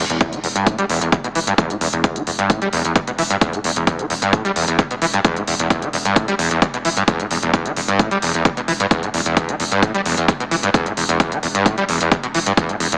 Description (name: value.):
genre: driving peak-time techno.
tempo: 131 BPM.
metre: 4/4.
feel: straight.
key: E minor.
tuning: A4 = 442 Hz.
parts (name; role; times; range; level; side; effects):
overdriven acid bass; riff; 0.0-13.0 s; E2 to G3; -20 LUFS; equal; distortion, ensemble chorus, vintage 12-bit sampler grit, sidechain pumping, dub echo.
saturated sub bass; bass; 0.0-13.0 s; E1; -34 LUFS; equal; overdrive, sidechain pumping, low-pass filter.
electronic hi-hat; drums; 0.1-13.0 s; none; -25 LUFS; equal; overdrive, studio reverb.
electronic kick drum; drums; 0.2-12.7 s; none; -16 LUFS; equal; overdrive, studio reverb.
room: light reverb.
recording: small speaker sound.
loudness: -16 LUFS.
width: side -27 dB against mid.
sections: 0.0-13.0 A section.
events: none.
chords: 0.0 Em.